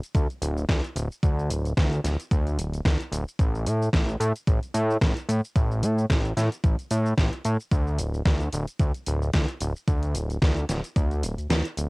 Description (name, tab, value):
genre	nu-disco, nu disco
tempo	111 BPM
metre	4/4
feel	swing 56% on 16ths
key	unclear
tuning	A4 = 442 Hz
part	pop drum kit	drums	0.0-11.9 s	hi-hat, shaker, snare drum	-30 LUFS	equal	overdrive, cassette tape
part	fat analog bass	bass	0.1-11.9 s	D1 to A2	-25 LUFS	equal	sidechain pumping
part	electronic kick drum	drums	0.1-11.1 s	none	-22 LUFS	equal	cassette tape
room	little or no reverb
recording	home recording on cassette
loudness	-23 LUFS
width	side -28 dB against mid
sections	0.0-11.9 A section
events	kick drops out 11.5-11.9; band accent 11.5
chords	none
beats	0.15 0.69 | 1.23 1.77 2.31 2.85 | 3.39 3.93 4.47 5.01 | 5.55 6.09 6.63 7.17 | 7.72 8.26 8.80 9.34 | 9.88 10.42 10.96 11.50